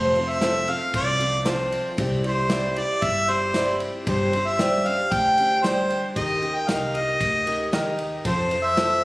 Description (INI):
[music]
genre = honky-tonk and classic country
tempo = 115 BPM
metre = 4/4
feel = straight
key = F major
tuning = A4 = 440 Hz
[part]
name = warm harmonica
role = melody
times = 0.0-9.0 s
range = C5 to G5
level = -23 LUFS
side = equal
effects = none
[part]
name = picked steel-string acoustic guitar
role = accompaniment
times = 0.0-9.0 s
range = F2 to D5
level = -27 LUFS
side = left 1 dB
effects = none
[part]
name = upright bass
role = bass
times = 0.0-9.0 s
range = F1 to F2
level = -30 LUFS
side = equal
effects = none
[part]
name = natural country drum kit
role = drums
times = 0.2-8.9 s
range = kick drum, ride cymbal, snare drum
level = -30 LUFS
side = equal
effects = none
[part]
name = warm baby grand piano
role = accompaniment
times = 0.4-9.0 s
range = E4 to Eb5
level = -28 LUFS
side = right 1 dB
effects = none
[sound]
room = moderate large studio reverb, RT60 1.2 s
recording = recorded on a phone in the room, studio reverb, compression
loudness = -20 LUFS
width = side -20 dB against mid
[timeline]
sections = 0.0-9.0 A section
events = none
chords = 0.0 F; 2.0 Cadd9; 4.1 Gsus4; 6.2 Eb; 8.2 F